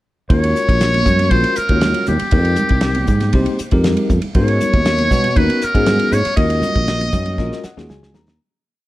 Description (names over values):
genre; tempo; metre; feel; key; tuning
electric jazz fusion; 118 BPM; 4/4; straight; Eb dorian; A4 = 440 Hz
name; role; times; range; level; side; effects
trumpet with metal mute; melody; 0.3-7.9 s; G4 to Eb5; -19 LUFS; left 1 dB; none
bell-like tine electric piano; accompaniment; 0.3-8.4 s; Ab3 to Bb5; -22 LUFS; left 2 dB; fast stereo tremolo
sustaining fretless electric bass; bass; 0.3-8.4 s; Bb1 to Cb3; -18 LUFS; equal; none
damped 70s drum kit; drums; 0.3-8.4 s; hi-hat, kick drum, ride cymbal, snare drum; -19 LUFS; equal; none
congas; percussion; 0.9-8.3 s; none; -24 LUFS; right 3 dB; none
room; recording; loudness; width
light reverb; dark, warm production; -13 LUFS; side -16 dB against mid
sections
0.3-8.4 A section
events
fade-out 6.4-8.4; tine electric piano fill 6.9-8.4; drum fill 7.4-8.4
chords
0.3 Ebm11; 2.3 Fm11; 4.4 Abm11; 6.4 Ebm11